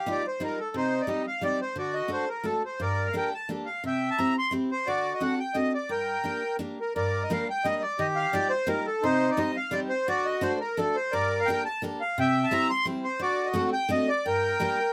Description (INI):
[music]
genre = musette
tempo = 173 BPM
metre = 3/4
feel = rubato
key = G minor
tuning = A4 = 439 Hz
[part]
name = accordion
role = melody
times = 0.0-14.9 s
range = Eb4 to C6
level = -29 LUFS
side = equal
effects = none
[part]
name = picked steel-string acoustic guitar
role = accompaniment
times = 0.1-14.8 s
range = G2 to D5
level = -33 LUFS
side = equal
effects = none
[sound]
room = little or no reverb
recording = close, detailed microphones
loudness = -28 LUFS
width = mono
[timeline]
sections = 0.0-7.0 A section; 7.0-14.9 A section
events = none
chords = 0.0 Ebadd9; 0.7 Cm; 1.8 D; 2.8 Gmadd9; 3.8 C; 4.9 D7; 5.9 Gm; 8.0 Ebadd9; 9.0 Cm; 10.1 D; 11.1 Gmadd9; 12.2 C; 13.2 D7; 14.3 Gm